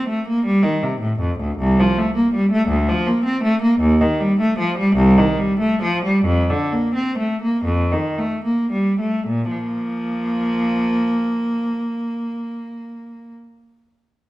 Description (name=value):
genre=classical, baroque-style suite movement for unaccompanied cello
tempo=36-55 BPM (dotted quarters)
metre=6/8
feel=rubato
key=Bb major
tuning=A4 = 440 Hz
part: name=rich cello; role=solo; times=0.0-13.3 s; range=C2 to C4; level=-17 LUFS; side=equal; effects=none
room=wet recital hall reverb, RT60 1.3 s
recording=dark, warm production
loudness=-17 LUFS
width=side -17 dB against mid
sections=0.0-9.3 A section; 9.3-12.6 B section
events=slowing down 2.7-9.3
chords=0.0 Bb; 1.6 F/C; 2.7 Bb/D; 3.8 Eb; 5.0 Cm; 6.3 Bb/F; 7.7 F7; 9.3 Bb5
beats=0.44 | 1.57 2.69 | 3.80 4.97 | 6.25 7.65 | 9.26 10.91